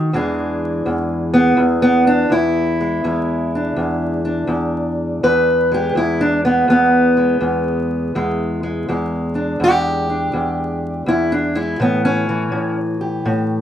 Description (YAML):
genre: acoustic country blues, solo or duo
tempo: 82 BPM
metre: 4/4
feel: swing 66% on 8ths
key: E mixolydian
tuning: A4 = 440 Hz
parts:
  - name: fingerpicked steel-string acoustic guitar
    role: solo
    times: 0.0-13.6 s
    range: E2 to B4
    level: -15 LUFS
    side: equal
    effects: none
room: moderate studio reverb, RT60 0.5 s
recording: vinyl crackle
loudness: -15 LUFS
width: side -10 dB against mid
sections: 0.1-13.6 A section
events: steel-string acoustic guitar solo 0.1-13.6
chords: 0.1 E7; 11.8 A7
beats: | 0.10 0.84 1.57 2.31 | 3.04 3.77 4.50 5.23 | 5.96 6.69 7.42 8.15 | 8.88 9.61 10.33 11.06 | 11.78 12.51 13.24